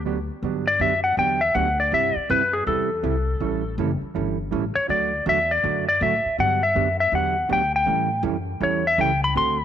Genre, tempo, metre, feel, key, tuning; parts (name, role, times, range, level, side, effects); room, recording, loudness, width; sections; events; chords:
country, western swing; 161 BPM; 4/4; swing 64% on 8ths; G major; A4 = 442 Hz
clean lap steel guitar; melody; 0.0-9.6 s; Ab4 to C6; -20 LUFS; left 2 dB
upright bass; bass; 0.0-9.6 s; F#1 to A2; -28 LUFS; left 2 dB
hollow-body jazz guitar; accompaniment; 0.1-9.6 s; C3 to A4; -27 LUFS; right 10 dB
light reverb, small room ambience; 1960s-style stereo; -20 LUFS; side -9 dB against mid
0.4-9.6 A section
electric slide guitar solo 0.4-9.6
0.4 Gmaj7; 1.9 C; 3.4 A7; 4.9 D; 6.4 Gmaj7; 7.9 A7